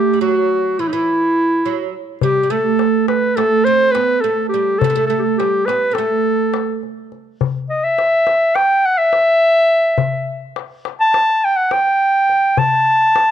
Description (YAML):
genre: Turkish makam ensemble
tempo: 209 BPM (eighths)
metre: 9/8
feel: straight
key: A makam nikriz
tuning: A4 = 442 Hz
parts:
  - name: warm clarinet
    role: melody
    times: 0.0-13.3 s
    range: D#4 to A5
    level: -14 LUFS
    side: equal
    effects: none
  - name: oud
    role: second line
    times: 0.0-6.8 s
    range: E3 to C4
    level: -20 LUFS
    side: right 16 dB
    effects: none
  - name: darbuka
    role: percussion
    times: 2.2-13.3 s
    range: none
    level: -22 LUFS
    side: left 9 dB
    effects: none
room: light reverb, small room ambience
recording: 1960s-style stereo with parts hard left and right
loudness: -13 LUFS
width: side -10 dB against mid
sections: 0.0-7.4 A section; 7.4-13.3 B section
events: none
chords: none